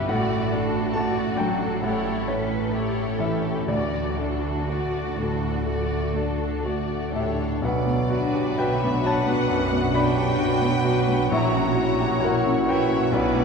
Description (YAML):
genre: classical, romantic movement for piano and orchestra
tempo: 60-70 BPM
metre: 4/4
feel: rubato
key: D major, B minor from 7.6 s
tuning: A4 = 440 Hz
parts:
  - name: clear baby grand piano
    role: melody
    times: 0.0-13.4 s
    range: A#1 to C#6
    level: -24 LUFS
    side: left 1 dB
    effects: none
  - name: rich chamber violin section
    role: melody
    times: 0.0-13.4 s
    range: A4 to D5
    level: -35 LUFS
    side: left 4 dB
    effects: none
  - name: rich chamber violin section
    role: second line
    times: 0.0-13.4 s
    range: E4 to A#5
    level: -33 LUFS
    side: left 4 dB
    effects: none
  - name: rich chamber viola section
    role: accompaniment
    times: 0.0-13.4 s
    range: A3 to F#4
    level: -32 LUFS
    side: right 1 dB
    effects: none
  - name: rich chamber double bass section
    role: bass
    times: 0.0-13.4 s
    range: A1 to D2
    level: -30 LUFS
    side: right 3 dB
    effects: none
  - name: warm studio cello section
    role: bass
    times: 0.0-13.4 s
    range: A#2 to B4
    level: -31 LUFS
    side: right 3 dB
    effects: none
  - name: bright large flute ensemble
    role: second line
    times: 7.6-13.4 s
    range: F#5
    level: -35 LUFS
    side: left 2 dB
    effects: none
  - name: mellow clarinet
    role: second line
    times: 7.6-13.4 s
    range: D4 to E4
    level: -31 LUFS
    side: left 2 dB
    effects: none
  - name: mellow cor anglais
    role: second line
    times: 7.6-13.4 s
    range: B4 to C#5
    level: -33 LUFS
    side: right 4 dB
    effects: none
  - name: warm bassoon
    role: accompaniment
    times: 7.6-13.4 s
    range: F#3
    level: -31 LUFS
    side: left 1 dB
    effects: none
  - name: mellow French horn section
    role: sustained chords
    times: 7.6-13.4 s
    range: F#3 to E4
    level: -30 LUFS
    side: left 5 dB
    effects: none
room: wet cathedral reverb, RT60 7.4 s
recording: recorded in a church or concert hall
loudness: -21 LUFS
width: side -5 dB against mid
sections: 0.0-7.6 A section; 7.6-13.4 B section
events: none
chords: 0.1 D/A; 1.8 A7; 3.7 D; 7.6 Bm; 11.3 F#7/A#